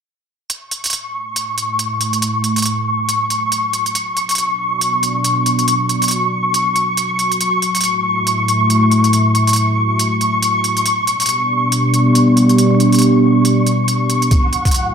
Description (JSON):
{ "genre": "deep dubstep", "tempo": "139 BPM", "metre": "4/4", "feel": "swing 58% on 16ths, half-time", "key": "F# phrygian", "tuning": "A4 = 438 Hz", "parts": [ { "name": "dark analog pad", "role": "sustained chords", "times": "1.5-14.9 s", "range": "A3 to E5", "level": "-16 LUFS", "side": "equal", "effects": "chorus" }, { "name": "electronic hi-hat", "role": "drums", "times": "0.5-14.8 s", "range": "none", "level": "-20 LUFS", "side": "right 2 dB", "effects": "none" }, { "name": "flickering grainy texture", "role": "texture", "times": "0.9-14.9 s", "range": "F#5 to C#6", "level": "-17 LUFS", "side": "left 1 dB", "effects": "built-in reverb" }, { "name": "electronic kick drum", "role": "drums", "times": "14.3-14.7 s", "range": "none", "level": "-15 LUFS", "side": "equal", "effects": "none" } ], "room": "moderate digital room reverb, RT60 1.0 s", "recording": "none", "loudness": "-13 LUFS", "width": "side -7 dB against mid", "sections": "0.5-14.9 A section", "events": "filter sweep on analog synth pad 0.5-14.9", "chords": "0.5 F#m7; 4.0 Bm; 7.4 F#m7; 10.9 G; 14.3 F#m7" }